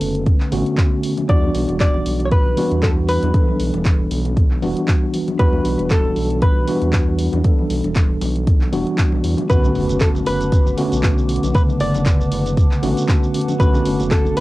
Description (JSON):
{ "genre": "deep house", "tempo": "117 BPM", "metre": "4/4", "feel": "swing 55% on 16ths", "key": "B minor", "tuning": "A4 = 440 Hz", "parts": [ { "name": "hollow-body jazz guitar", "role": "melody", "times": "0.0-14.4 s", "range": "A4 to D5", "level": "-23 LUFS", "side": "equal", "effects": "cassette tape, analog delay" }, { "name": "mellow tine electric piano", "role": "stabs", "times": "0.0-14.4 s", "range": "C#3 to B4", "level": "-20 LUFS", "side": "equal", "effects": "medium stereo tremolo, sidechain pumping, analog delay" }, { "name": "round analog bass", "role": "bass", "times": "0.0-14.4 s", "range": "E1 to E2", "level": "-23 LUFS", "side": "equal", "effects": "tube saturation, sidechain pumping" }, { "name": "deep house drum kit", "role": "drums", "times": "0.0-14.4 s", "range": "handclaps, hi-hat, shaker", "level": "-29 LUFS", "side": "equal", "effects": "cassette tape" }, { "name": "electronic kick drum", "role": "drums", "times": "0.3-14.2 s", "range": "none", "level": "-16 LUFS", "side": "equal", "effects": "cassette tape" }, { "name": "congas", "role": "percussion", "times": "0.5-14.3 s", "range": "none", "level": "-30 LUFS", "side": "left 7 dB", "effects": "none" }, { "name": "warbly tape-like pad", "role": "sustained chords", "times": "9.5-14.4 s", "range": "B4 to D6", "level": "-32 LUFS", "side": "equal", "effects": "chorus, built-in reverb, sidechain pumping" }, { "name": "impact", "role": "sound effects", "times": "9.6-11.5 s", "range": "none", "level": "-30 LUFS", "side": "equal", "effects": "none" } ], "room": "little or no reverb", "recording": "home recording on cassette", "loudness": "-15 LUFS", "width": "side -18 dB against mid", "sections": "0.0-9.5 A section; 9.5-14.4 B section", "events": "drop 9.5-14.4; impact 9.5-11.5", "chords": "0.0 Bm7; 1.3 Em9; 9.5 Bm7", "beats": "0.27 0.78 | 1.29 1.80 2.32 2.83 | 3.34 3.86 4.37 4.88 | 5.39 5.91 6.42 6.93 | 7.45 7.96 8.47 8.98 | 9.50 10.01 10.52 11.04 | 11.55 12.06 12.57 13.09 | 13.60 14.11" }